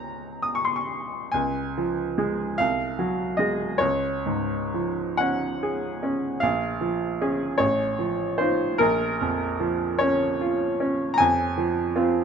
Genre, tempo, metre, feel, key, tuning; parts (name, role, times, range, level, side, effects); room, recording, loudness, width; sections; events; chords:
classical, romantic nocturne for solo piano; 36-52 BPM (dotted quarters); 6/8; rubato; Db major; A4 = 435 Hz
bright baby grand piano; solo; 0.0-12.2 s; A1 to Eb6; -22 LUFS; right 1 dB
moderate recital hall reverb, RT60 1.5 s; close, detailed microphones; -22 LUFS; side -7 dB against mid
0.0-1.3 A section; 1.3-12.2 B section
0.0 Db; 2.6 Ab7/C; 3.8 Db; 6.4 Bbm7; 7.6 F7/A; 8.8 Bbm; 11.2 Fm